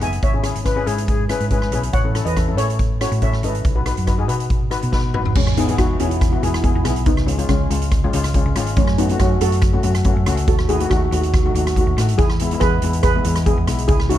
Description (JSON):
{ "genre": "calypso", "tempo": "141 BPM", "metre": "4/4", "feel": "straight", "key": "E major", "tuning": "A4 = 440 Hz", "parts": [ { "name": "steel pan", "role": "melody", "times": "0.0-14.2 s", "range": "G#3 to G#5", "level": "-23 LUFS", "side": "right 2 dB", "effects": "none" }, { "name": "steel pan", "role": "accompaniment", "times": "0.0-14.2 s", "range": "G#3 to B4", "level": "-24 LUFS", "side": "left 6 dB", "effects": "none" }, { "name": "hollow-body short-scale fingered electric bass", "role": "bass", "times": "0.0-14.2 s", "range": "E1 to B2", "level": "-21 LUFS", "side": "equal", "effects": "none" }, { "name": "street-band drum kit", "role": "drums", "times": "0.0-14.2 s", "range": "crash cymbal, hi-hat, kick drum, rim click, snare drum, toms", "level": "-20 LUFS", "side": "equal", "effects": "none" }, { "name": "breathy mellow silver concert flute", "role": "second line", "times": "0.7-1.8 s", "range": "G#4 to B4", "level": "-25 LUFS", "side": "left 5 dB", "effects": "none" } ], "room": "light reverb", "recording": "dark, warm production", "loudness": "-16 LUFS", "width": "side -12 dB against mid", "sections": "0.0-5.4 A section; 5.4-14.2 B section", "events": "drum fill 4.9-5.4", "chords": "0.2 C#m7/G#; 1.9 A; 3.6 B; 5.4 Emaj7; 7.1 C#7; 8.8 F#m; 10.5 D#dim; 12.2 E" }